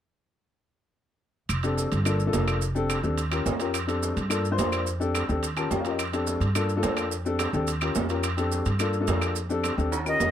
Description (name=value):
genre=Afro-Cuban jazz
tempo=214 BPM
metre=4/4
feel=straight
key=F major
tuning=A4 = 440 Hz
part: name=upright bass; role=bass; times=1.5-10.3 s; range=F1 to G2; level=-28 LUFS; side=right 1 dB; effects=none
part: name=claves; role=percussion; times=1.5-10.2 s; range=none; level=-36 LUFS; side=left 3 dB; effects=none
part: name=maracas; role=percussion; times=1.5-10.3 s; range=none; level=-38 LUFS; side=right 11 dB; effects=none
part: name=timbales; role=percussion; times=1.5-10.3 s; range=none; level=-31 LUFS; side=right 5 dB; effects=none
part: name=warm upright piano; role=accompaniment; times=1.6-10.3 s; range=Bb3 to A5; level=-28 LUFS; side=left 4 dB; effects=none
part: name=breathy bright concert flute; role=melody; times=10.1-10.3 s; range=Eb5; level=-23 LUFS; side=right 1 dB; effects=none
room=light reverb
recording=none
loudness=-24 LUFS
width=side -10 dB against mid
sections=1.5-10.3 A section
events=upright piano fill 5.4-6.0; drum fill 9.9-10.3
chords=1.5 F6; 2.1 Gm7; 2.6 F6; 3.2 Eb7; 3.7 F6; 4.3 Gm7; 4.9 F6; 5.4 Eb7; 6.0 F6; 6.5 Gm7; 7.1 F6; 7.7 Eb7; 8.2 F6; 8.8 Gm7; 9.4 F6